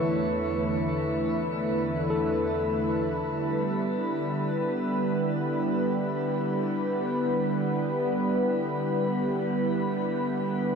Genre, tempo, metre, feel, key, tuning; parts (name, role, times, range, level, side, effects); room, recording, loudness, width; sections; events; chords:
ambient; free time; E minor; A4 = 440 Hz
warm analog pad; sustained chords; 0.0-10.8 s; E2 to B4; -25 LUFS; equal; chorus
barky tine electric piano; arpeggios; 0.0-3.3 s; A4 to E5; -34 LUFS; left 2 dB; overdrive, diffuse ambient delay
analog drone; drone; 0.5-3.3 s; barely audible
wet shimmer reverb, RT60 7.9 s; dark, warm production; -25 LUFS; side -6 dB against mid
0.0-3.2 A section; 3.2-10.8 B section
0.0 Asus4/E; 3.2 Em7